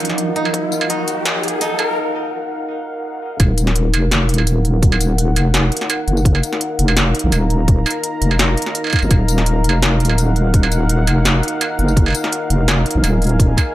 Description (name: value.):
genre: half-time drum and bass.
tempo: 168 BPM.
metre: 4/4.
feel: half-time.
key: Eb minor.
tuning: A4 = 440 Hz.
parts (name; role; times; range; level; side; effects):
dark analog pad; sustained chords; 0.0-13.7 s; Eb4 to Bb5; -22 LUFS; equal; chorus, sidechain pumping.
koto; arpeggios; 0.0-4.0 s; Eb4; -25 LUFS; right 1 dB; vintage 12-bit sampler grit, tape echo.
industrial drum kit; drums; 0.0-13.7 s; hi-hat, snare drum, struck metal, tambourine; -19 LUFS; right 1 dB; high-pass filter on hats, high-pass filter on snare, high-pass filter on perc.
riser; sound effects; 0.0-2.0 s; none; -24 LUFS; left 2 dB; none.
flickering grainy texture; texture; 0.0-2.0 s; F3; -27 LUFS; right 2 dB; built-in reverb.
electronic kick drum; drums; 0.5-0.6, 3.4-13.7 s; none; -13 LUFS; equal; high-pass filter on kick.
deep soft wobble bass; bass; 3.4-13.6 s; Eb1 to Bb1; -15 LUFS; equal; chorus, tube saturation.
room: light reverb.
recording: high-pass filter.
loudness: -14 LUFS.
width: side -15 dB against mid.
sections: 0.0-3.4 A section; 3.4-13.7 B section.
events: build-up 0.0-3.4; riser 0.0-2.0; filter sweep 0.0-3.4; break 2.0-3.4; drop 3.4-13.7.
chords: 0.0 Ebmadd9.